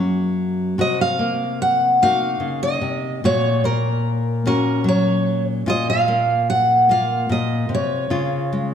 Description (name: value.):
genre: acoustic folk-pop ballad.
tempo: 74 BPM.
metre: 3/4.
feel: straight.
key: unclear.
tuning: A4 = 440 Hz.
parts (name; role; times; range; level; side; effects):
nylon-string guitar; accompaniment; 0.0-8.7 s; Gb2 to Gb4; -21 LUFS; left 2 dB; none.
picked steel-string acoustic guitar; melody; 0.8-8.7 s; Bb4 to Gb5; -19 LUFS; right 1 dB; none.
room: wet scoring stage reverb, RT60 1.5 s.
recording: none.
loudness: -17 LUFS.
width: side -8 dB against mid.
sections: 0.0-8.7 A section.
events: none.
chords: 0.0 Gb; 0.8 Cm7b5; 3.2 Gb/Bb; 5.7 Bb5; 8.1 Db.